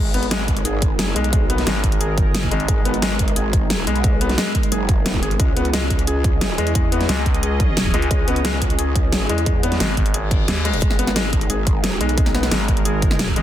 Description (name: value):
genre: dark technical drum and bass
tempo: 177 BPM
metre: 4/4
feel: straight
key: G# minor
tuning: A4 = 440 Hz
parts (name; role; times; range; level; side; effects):
- sweeping resonant pad; sustained chords; 0.0-13.4 s; G#3 to D#5; -28 LUFS; right 2 dB; chorus, sidechain pumping
- felt-muted upright piano; arpeggios; 0.0-13.4 s; G#3 to G#4; -25 LUFS; left 3 dB; sidechain pumping, tape echo
- growl bass; bass; 0.0-12.5 s; F#1 to E2; -22 LUFS; equal; chorus
- dubstep drum kit; drums; 0.1-13.4 s; hi-hat, snare drum; -23 LUFS; equal; none
- electronic kick drum; drums; 0.5-13.3 s; none; -20 LUFS; equal; none
- growling FM bass; bass; 1.7-2.7, 7.1-13.4 s; G#1 to D#2; -22 LUFS; equal; none
- reverse cymbal; sound effects; 10.2-10.8 s; none; -33 LUFS; left 4 dB; none
room: light reverb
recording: dense, heavily limited modern master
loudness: -16 LUFS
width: side -12 dB against mid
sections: 0.0-13.4 A section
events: reverse cymbal 10.2-10.8; kick drops out 10.5-10.8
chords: 0.0 G#m; 5.4 C#m; 10.8 G#m